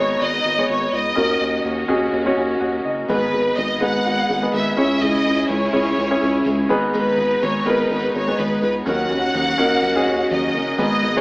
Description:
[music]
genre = piano-driven pop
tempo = 125 BPM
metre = 4/4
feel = swing 56% on 16ths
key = G# minor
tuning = A4 = 438 Hz
[part]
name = rich studio violin section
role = melody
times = 0.0-11.2 s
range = B4 to F#5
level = -21 LUFS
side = equal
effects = tape echo
[part]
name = warm grand piano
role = accompaniment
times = 0.0-11.2 s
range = G#2 to G#5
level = -21 LUFS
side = equal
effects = none
[part]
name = warm studio string section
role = sustained chords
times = 0.0-11.2 s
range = C#3 to G#4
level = -28 LUFS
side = equal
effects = none
[part]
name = round analog bass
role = bass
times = 0.0-11.2 s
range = F#1 to D#2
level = -28 LUFS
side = equal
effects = none
[part]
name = picked steel-string acoustic guitar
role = riff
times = 3.1-11.2 s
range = G#2 to A#4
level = -24 LUFS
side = equal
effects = none
[sound]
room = wet studio reverb, RT60 0.5 s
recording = AM radio sound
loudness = -17 LUFS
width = side -27 dB against mid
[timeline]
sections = 0.0-10.8 A section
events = none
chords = 0.0 G#m; 1.2 D#m7; 3.1 G#m; 4.8 C#m; 6.7 G#m; 8.9 D#m7

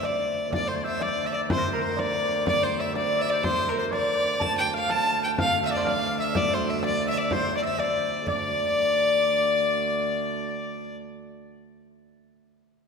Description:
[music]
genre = medieval dance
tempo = 124 BPM (dotted quarters)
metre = 6/8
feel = straight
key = D minor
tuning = A4 = 440 Hz
[part]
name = clear fiddle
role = melody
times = 0.0-11.0 s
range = Bb4 to A5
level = -25 LUFS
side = left 2 dB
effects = none
[part]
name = concert harp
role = second line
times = 0.0-11.7 s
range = Bb4 to A5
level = -32 LUFS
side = right 4 dB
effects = none
[part]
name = rich viola da gamba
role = drone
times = 0.0-11.0 s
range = D2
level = -33 LUFS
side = right 2 dB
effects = none
[part]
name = frame drum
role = percussion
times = 0.0-8.4 s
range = none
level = -32 LUFS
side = equal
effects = none
[part]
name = edgy shawm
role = second line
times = 0.5-11.0 s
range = Bb4 to A5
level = -32 LUFS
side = left 4 dB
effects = none
[sound]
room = wet concert hall reverb, RT60 2.4 s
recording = recorded in a church or concert hall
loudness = -22 LUFS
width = side -5 dB against mid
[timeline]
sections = 0.5-8.3 A section; 8.3-10.2 B section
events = none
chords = none

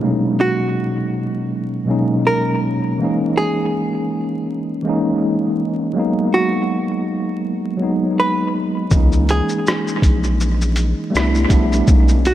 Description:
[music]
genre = lo-fi hip hop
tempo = 81 BPM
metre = 4/4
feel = swing 57% on 16ths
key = C# dorian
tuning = A4 = 440 Hz
[part]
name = mellow tine electric piano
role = accompaniment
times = 0.0-12.3 s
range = B2 to E4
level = -18 LUFS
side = equal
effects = medium stereo tremolo, cassette tape, analog delay
[part]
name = hollow-body jazz guitar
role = melody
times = 0.4-12.3 s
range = F#4 to B4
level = -21 LUFS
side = right 2 dB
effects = analog delay
[part]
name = saturated sub bass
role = bass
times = 8.9-12.3 s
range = A#1 to C#2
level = -18 LUFS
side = equal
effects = none
[part]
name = lo-fi sampler-style drum kit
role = drums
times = 8.9-12.3 s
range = hi-hat, kick drum, rim click, shaker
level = -16 LUFS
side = equal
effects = analog delay
[sound]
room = light reverb, digital ambience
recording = echo-heavy mix, vinyl crackle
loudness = -16 LUFS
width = side -12 dB against mid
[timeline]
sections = 0.0-12.3 A section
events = none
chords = 0.0 Bmaj13; 3.0 C#m69; 6.0 G#m9; 8.9 C#m69; 11.1 Cmaj13

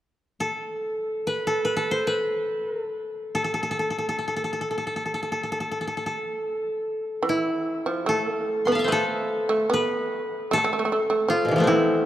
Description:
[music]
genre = japanese traditional, Japanese chamber music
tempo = free time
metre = none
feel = none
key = A hirajoshi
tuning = A4 = 436 Hz
[part]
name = koto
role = melody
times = 0.4-12.1 s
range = B2 to C6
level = -24 LUFS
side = equal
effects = none
[part]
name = shamisen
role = second line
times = 7.2-12.1 s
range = E3 to B3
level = -26 LUFS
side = right 2 dB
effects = none
[sound]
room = moderate church reverb, RT60 3.2 s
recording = dark, warm production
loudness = -23 LUFS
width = side -12 dB against mid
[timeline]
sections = 0.0-7.2 A section; 7.2-12.1 B section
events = none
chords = none

